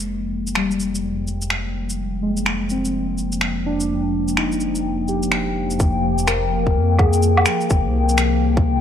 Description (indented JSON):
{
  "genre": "future garage",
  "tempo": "126 BPM",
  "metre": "4/4",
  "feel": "swing 63% on 16ths",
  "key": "F dorian",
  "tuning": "A4 = 440 Hz",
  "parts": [
    { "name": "muted felt-like synth keys", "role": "accompaniment", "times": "0.0-8.8 s", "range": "G3 to Bb4", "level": "-25 LUFS", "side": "equal", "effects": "chorus, phaser, sidechain pumping, low-pass filter, tape echo" },
    { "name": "warbly tape-like pad", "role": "sustained chords", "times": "0.0-8.8 s", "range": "F3 to G5", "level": "-24 LUFS", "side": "left 4 dB", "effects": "chorus, built-in reverb, sidechain pumping" },
    { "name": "dark detuned saw bass", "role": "bass", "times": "0.0-8.8 s", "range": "F1 to F2", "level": "-23 LUFS", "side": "equal", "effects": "sidechain pumping" },
    { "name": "electronic shaker, finger snaps and woodblock", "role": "drums", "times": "0.5-8.3 s", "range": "none", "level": "-22 LUFS", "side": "equal", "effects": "none" },
    { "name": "electronic kick drum", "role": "drums", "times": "5.8-8.6 s", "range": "none", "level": "-18 LUFS", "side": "equal", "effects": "none" }
  ],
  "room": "light reverb",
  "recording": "lossy compression artefacts",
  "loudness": "-18 LUFS",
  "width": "side -9 dB against mid",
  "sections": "0.0-5.8 A section; 5.8-8.8 B section",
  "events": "filter sweep on ambient pad 0.0-5.8; filter sweep on synth keys 0.0-5.8",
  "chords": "0.0 Fm7; 5.8 Fm"
}